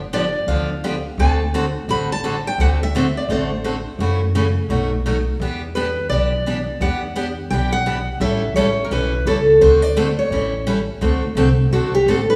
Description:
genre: acoustic string swing (jazz manouche).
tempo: 171 BPM.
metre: 4/4.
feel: swing 60% on 8ths.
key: D mixolydian.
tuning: A4 = 440 Hz.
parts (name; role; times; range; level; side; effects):
upright bass; bass; 0.0-12.4 s; G1 to F#2; -24 LUFS; equal; none.
picked steel-string acoustic guitar; melody; 0.1-12.4 s; F#4 to B5; -22 LUFS; equal; none.
picked steel-string acoustic guitar; accompaniment; 0.1-12.2 s; B2 to A4; -24 LUFS; equal; none.
room: wet recital hall reverb, RT60 1.4 s.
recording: recorded in a church or concert hall, small room ambience.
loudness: -19 LUFS.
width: mono.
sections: 0.0-11.0 A section; 11.0-12.4 B section.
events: steel-string acoustic guitar solo 11.0-12.4.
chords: 0.0 G7; 1.2 D7; 4.0 F#m7; 4.7 B7; 5.4 Em7; 8.2 A7; 9.6 D7; 10.3 A7; 11.0 D7.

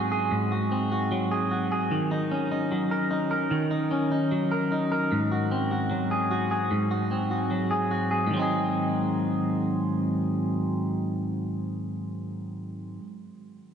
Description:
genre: dream pop.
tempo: 75 BPM.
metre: 4/4.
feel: straight.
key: Ab mixolydian.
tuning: A4 = 440 Hz.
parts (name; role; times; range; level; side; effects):
clean electric guitar; solo; 0.0-13.1 s; Ab2 to Bb4; -24 LUFS; equal; lush chorus, ping-pong delay.
room: wet cathedral reverb, RT60 5.3 s.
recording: dreamy mix soaked in reverb, nothing above 10.7 kHz.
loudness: -24 LUFS.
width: side -8 dB against mid.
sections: 0.0-8.3 A section; 8.3-11.5 B section.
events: none.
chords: 0.0 Ab7; 1.9 Ebm7; 8.3 Ab7.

